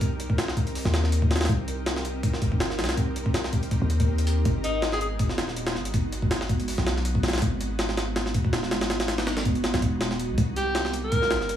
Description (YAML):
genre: drum and bass, jungle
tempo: 162 BPM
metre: 4/4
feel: swing 54% on 16ths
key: C minor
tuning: A4 = 440 Hz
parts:
  - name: long sustained 808-style bass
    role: bass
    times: 0.0-11.6 s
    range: Eb1 to Eb2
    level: -28 LUFS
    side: equal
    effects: none
  - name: jungle sampler-style drum kit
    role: drums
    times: 0.0-11.6 s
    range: hi-hat, kick drum, snare drum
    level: -25 LUFS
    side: equal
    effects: none
  - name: bright alto saxophone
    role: melody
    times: 4.6-5.1, 10.6-11.6 s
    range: Eb4 to Bb4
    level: -28 LUFS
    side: equal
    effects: vintage 12-bit sampler grit, dub echo
room: little or no reverb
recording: vinyl crackle, small room ambience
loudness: -23 LUFS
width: side -10 dB against mid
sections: 0.0-11.6 A section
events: none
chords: 0.0 Cm7; 4.5 Abm7; 10.4 Cm7